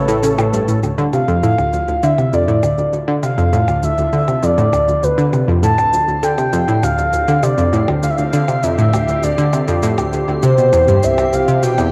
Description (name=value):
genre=ambient, sequencer-driven space music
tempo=100 BPM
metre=4/4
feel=straight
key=D dorian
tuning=A4 = 440 Hz
part: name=breathy flute-like synth lead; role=melody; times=0.0-11.9 s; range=B4 to A5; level=-20 LUFS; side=equal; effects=phaser, subtle chorus, vintage 12-bit sampler grit, cassette tape, tape echo
part: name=sweeping resonant pad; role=sustained chords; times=0.0-11.9 s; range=C3 to B4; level=-27 LUFS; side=equal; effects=chorus, cassette tape
part: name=analog pluck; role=riff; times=0.0-11.9 s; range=C2 to D3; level=-18 LUFS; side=equal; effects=chorus, cassette tape, tape echo
part: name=warm sub bass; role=bass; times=0.0-0.8 s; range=A1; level=-34 LUFS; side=equal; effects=none
part: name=bubbling stepped-filter texture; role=texture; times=0.0-11.9 s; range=C4 to C7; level=-36 LUFS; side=equal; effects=none
part: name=cabasa and percussion blips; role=percussion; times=0.1-11.9 s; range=none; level=-30 LUFS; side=equal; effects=cassette tape, tape echo
room=wet spring reverb, RT60 2.9 s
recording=home recording on cassette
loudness=-15 LUFS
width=mono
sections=0.8-11.9 A section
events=fade-in on analog synth pad 0.8-11.9; fade-in on drum 0.8-11.9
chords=0.0 Aadd9; 0.8 Dm; 10.4 C